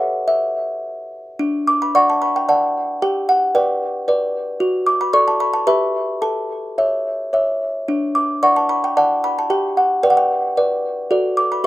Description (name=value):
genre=classical, lullaby for music box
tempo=111 BPM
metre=3/4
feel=rubato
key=D major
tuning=A4 = 439 Hz
part: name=music box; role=solo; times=0.0-11.7 s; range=D4 to D6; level=-16 LUFS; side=equal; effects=slapback echo
room=little or no reverb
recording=recorded outdoors, with no room sound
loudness=-16 LUFS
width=side -16 dB against mid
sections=0.0-1.4 A section; 1.4-11.7 B section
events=none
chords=0.0 A; 1.4 D; 3.0 G; 4.6 D/F#; 5.7 Em/G; 6.2 A; 7.9 D; 9.5 G; 11.1 D/F#